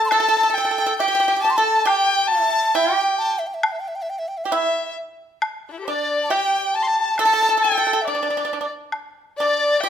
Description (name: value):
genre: chinese traditional, Chinese chamber ensemble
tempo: 68 BPM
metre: 2/4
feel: rubato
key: unclear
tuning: A4 = 440 Hz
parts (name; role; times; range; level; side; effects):
- mellow hollow large dizi; melody; 0.0-9.9 s; D5 to C6; -22 LUFS; equal; none
- clear erhu; second line; 0.0-9.9 s; D4 to C6; -21 LUFS; left 5 dB; none
- pipa; second line; 0.0-9.9 s; D4 to A4; -22 LUFS; right 5 dB; none
- woodblock; percussion; 0.1-9.9 s; none; -25 LUFS; left 2 dB; none
room: light reverb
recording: close, detailed microphones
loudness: -17 LUFS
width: side -9 dB against mid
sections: 0.0-9.9 A section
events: none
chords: none